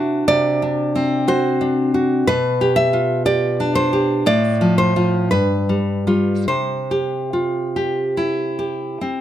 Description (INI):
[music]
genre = romantic piece for solo classical guitar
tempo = 47-61 BPM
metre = 4/4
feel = rubato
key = C major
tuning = A4 = 444 Hz
[part]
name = nylon-string guitar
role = solo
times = 0.0-9.2 s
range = G2 to E5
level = -16 LUFS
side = equal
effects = none
[sound]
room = light reverb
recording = close, detailed microphones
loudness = -16 LUFS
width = side -11 dB against mid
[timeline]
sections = 0.0-9.2 A section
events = none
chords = 0.0 D7/C; 2.3 G/B; 4.3 F/A; 5.3 G7; 6.5 C